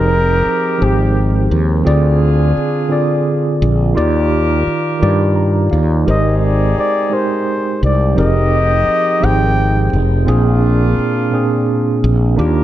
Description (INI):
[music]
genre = slow six-eight R&B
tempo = 57 BPM (dotted quarters)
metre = 6/8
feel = straight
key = unclear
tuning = A4 = 440 Hz
[part]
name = breathy flugelhorn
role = melody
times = 0.0-1.6, 6.1-10.0 s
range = G4 to G5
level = -19 LUFS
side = left 1 dB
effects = digital delay
[part]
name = mellow tine electric piano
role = accompaniment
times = 0.0-12.6 s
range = Bb2 to Bb5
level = -16 LUFS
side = right 2 dB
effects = medium stereo tremolo
[part]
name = mellow horn section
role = stabs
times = 0.0-12.6 s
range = Bb3 to Bb4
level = -24 LUFS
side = left 2 dB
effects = none
[part]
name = fretless electric bass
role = bass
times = 0.0-12.6 s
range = F1 to G2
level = -14 LUFS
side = left 1 dB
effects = none
[sound]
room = small room ambience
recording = none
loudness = -12 LUFS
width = side -13 dB against mid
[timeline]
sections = 0.0-12.6 A section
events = tine electric piano fill 5.0-6.1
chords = 0.0 Fm11; 1.8 Dm7b5; 4.0 Ebmaj9; 6.1 Abmaj7; 8.2 Fm11; 10.3 Bb7